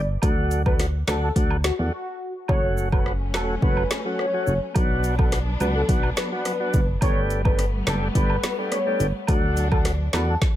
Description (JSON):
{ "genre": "dancehall", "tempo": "106 BPM", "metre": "4/4", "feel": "straight", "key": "F# phrygian", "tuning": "A4 = 440 Hz", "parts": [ { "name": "warm velvety synth lead", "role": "melody", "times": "0.0-10.4 s", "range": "F#4 to C#5", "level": "-29 LUFS", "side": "left 1 dB", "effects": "chorus, phaser, ping-pong delay" }, { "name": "solid FM bass", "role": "bass", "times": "0.0-10.4 s", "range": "E1 to E2", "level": "-24 LUFS", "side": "equal", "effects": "none" }, { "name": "tonewheel organ", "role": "accompaniment", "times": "0.2-10.3 s", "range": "F#3 to G4", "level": "-28 LUFS", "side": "left 1 dB", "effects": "slow rotary speaker" }, { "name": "afro-pop drum kit", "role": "drums", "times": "0.2-10.6 s", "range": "hi-hat, kick drum, rim click, snare drum", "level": "-23 LUFS", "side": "equal", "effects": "overdrive" }, { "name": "woodblock and cabasa", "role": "percussion", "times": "0.2-10.3 s", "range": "none", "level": "-35 LUFS", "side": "right 6 dB", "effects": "none" }, { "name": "warm studio string section", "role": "sustained chords", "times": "2.5-10.4 s", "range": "F#3 to D4", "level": "-33 LUFS", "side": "left 1 dB", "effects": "sidechain pumping" } ], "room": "little or no reverb", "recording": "none", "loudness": "-20 LUFS", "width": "side -13 dB against mid", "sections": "0.0-2.5 A section; 2.5-10.6 B section", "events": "break 1.9-2.5", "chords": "0.2 D; 2.5 F#m; 4.8 Bm; 7.0 Gadd9; 9.3 D", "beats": "| 0.23 0.79 1.36 1.93 | 2.49 3.06 3.62 4.19 | 4.75 5.32 5.89 6.45 | 7.02 7.58 8.15 8.72 | 9.28 9.85 10.42" }